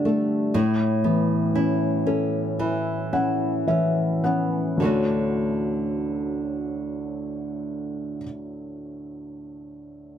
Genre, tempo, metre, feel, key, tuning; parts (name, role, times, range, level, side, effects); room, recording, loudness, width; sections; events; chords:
pop ballad; 52-61 BPM; 4/4; straight; D major; A4 = 440 Hz
felt-muted upright piano; accompaniment; 0.0-10.2 s; D2 to F#5; -24 LUFS; left 2 dB
nylon-string guitar; arpeggios; 0.0-8.3 s; A2 to G4; -27 LUFS; right 4 dB
light reverb; -22 LUFS; side -9 dB against mid
0.0-4.8 A section; 4.8-9.5 B section
slowing down 0.0-4.8; felt piano fill 2.6-4.8
0.0 Gsus2; 0.5 Aadd9; 4.8 Dmaj7